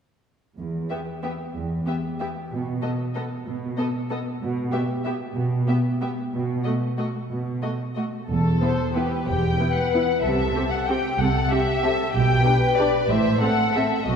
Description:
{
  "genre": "classical",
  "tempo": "187 BPM",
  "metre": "3/4",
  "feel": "uneven beats, rubato",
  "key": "E minor",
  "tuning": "A4 = 440 Hz",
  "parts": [
    { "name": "muted studio cello section", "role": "bass", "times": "0.6-14.2 s", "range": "E2 to C3", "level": "-26 LUFS", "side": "right 2 dB", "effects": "none" },
    { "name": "muted studio violin section", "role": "melody", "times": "0.9-14.2 s", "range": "B4 to G5", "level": "-27 LUFS", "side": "left 4 dB", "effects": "none" },
    { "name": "muted studio violin section", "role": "second line", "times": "0.9-14.2 s", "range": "F#4 to C5", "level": "-28 LUFS", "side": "left 3 dB", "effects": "none" },
    { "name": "muted studio viola section", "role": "accompaniment", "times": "0.9-13.8 s", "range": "A3 to A4", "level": "-29 LUFS", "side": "equal", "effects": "none" },
    { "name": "muted studio double bass section", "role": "bass", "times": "8.3-14.2 s", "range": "E1 to C2", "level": "-27 LUFS", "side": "right 2 dB", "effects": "none" }
  ],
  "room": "wet concert hall reverb, RT60 2.1 s",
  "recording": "heard from further back in the room",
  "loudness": "-21 LUFS",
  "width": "side -7 dB against mid",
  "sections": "0.6-8.3 A section; 8.3-14.2 B section",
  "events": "none",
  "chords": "0.6 E5; 2.5 N.C.; 6.3 B7(no3); 8.3 Em; 10.2 C; 12.1 G/B; 13.1 Am"
}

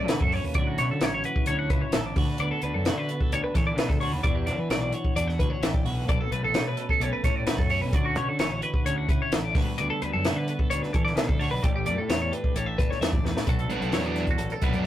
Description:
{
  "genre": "math rock and midwest emo",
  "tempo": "130 BPM",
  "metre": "4/4",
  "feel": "straight",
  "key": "B minor",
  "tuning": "A4 = 440 Hz",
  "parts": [
    { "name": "twelve-string electric guitar", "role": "accompaniment", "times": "0.0-14.9 s", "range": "G2 to A4", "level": "-33 LUFS", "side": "right 1 dB", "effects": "none" },
    { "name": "twelve-string electric guitar", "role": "arpeggios", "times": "0.0-14.9 s", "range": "F#4 to F#5", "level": "-30 LUFS", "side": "left 1 dB", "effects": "phaser" },
    { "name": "fuzz fingered electric bass", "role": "bass", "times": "0.0-14.9 s", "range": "G1 to E3", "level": "-30 LUFS", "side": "equal", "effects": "overdrive" },
    { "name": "compact cocktail drum kit", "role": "drums", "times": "0.1-14.8 s", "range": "hi-hat, kick drum, snare drum", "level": "-26 LUFS", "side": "equal", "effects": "none" },
    { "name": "overdriven electric guitar", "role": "riff", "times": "13.7-14.9 s", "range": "B2 to D4", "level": "-29 LUFS", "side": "right 1 dB", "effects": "spring reverb" }
  ],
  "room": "moderate booth ambience, RT60 0.2 s",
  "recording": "rough rehearsal-room recording, tube saturation",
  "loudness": "-23 LUFS",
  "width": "side -12 dB against mid",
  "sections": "0.0-13.5 A section; 13.5-14.9 B section",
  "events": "drum fill 13.2",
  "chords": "0.0 Bm9; 0.6 Dmaj9; 2.2 Dmaj13; 4.2 Em9; 6.1 Bm9; 7.9 Dmaj9; 9.6 Gmaj7/D; 11.6 A7sus4; 13.5 Bm7"
}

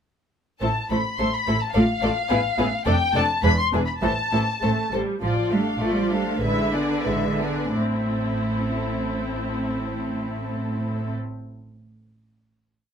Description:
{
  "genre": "quick classical-period movement for string orchestra",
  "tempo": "82-108 BPM",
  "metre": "2/4",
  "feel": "rubato",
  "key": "A minor",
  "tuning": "A4 = 441 Hz",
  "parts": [
    { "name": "muted studio violin section", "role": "melody", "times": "0.6-11.1 s", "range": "A4 to C6", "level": "-27 LUFS", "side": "left 4 dB", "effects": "none" },
    { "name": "muted studio violin section", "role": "second line", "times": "0.6-11.1 s", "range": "E4 to F5", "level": "-29 LUFS", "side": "left 2 dB", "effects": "none" },
    { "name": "muted studio viola section", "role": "accompaniment", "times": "0.6-11.1 s", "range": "E3 to F4", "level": "-27 LUFS", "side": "right 1 dB", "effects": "none" },
    { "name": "muted studio cello section", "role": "bass", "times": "0.6-11.1 s", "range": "E2 to A3", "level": "-27 LUFS", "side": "right 1 dB", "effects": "none" },
    { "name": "muted studio double bass section", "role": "bass", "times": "0.6-11.1 s", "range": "E1 to A1", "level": "-29 LUFS", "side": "right 2 dB", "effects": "none" }
  ],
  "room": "moderate studio reverb, RT60 0.5 s",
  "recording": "minimal, uncompressed stereo recording",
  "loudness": "-21 LUFS",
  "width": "side -7 dB against mid",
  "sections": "0.6-5.2 A section; 5.2-7.8 coda; 7.8-10.6 final chord",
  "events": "slowing down 4.6-7.8",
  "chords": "0.6 Am; 1.8 Dm/A (rootless); 2.3 E5/A; 2.9 Dm/F; 3.4 E7(no3); 4.0 Am; 5.2 Dm/A; 6.4 E7/A; 7.8 Am"
}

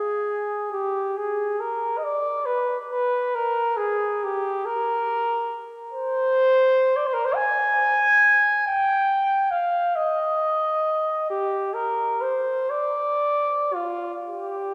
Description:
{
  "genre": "classical, free, expressive piece for unaccompanied trumpet",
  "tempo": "37-49 BPM (dotted quarters)",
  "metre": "6/8",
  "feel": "rubato",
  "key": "unclear",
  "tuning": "A4 = 440 Hz",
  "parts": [
    { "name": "mellow trumpet", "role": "solo", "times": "0.0-14.7 s", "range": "F4 to Ab5", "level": "-23 LUFS", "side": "equal", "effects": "none" }
  ],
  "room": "wet church reverb, RT60 3.1 s",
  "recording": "heard from further back in the room",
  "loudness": "-23 LUFS",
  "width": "mono",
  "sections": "0.0-14.7 A section",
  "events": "none",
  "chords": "none"
}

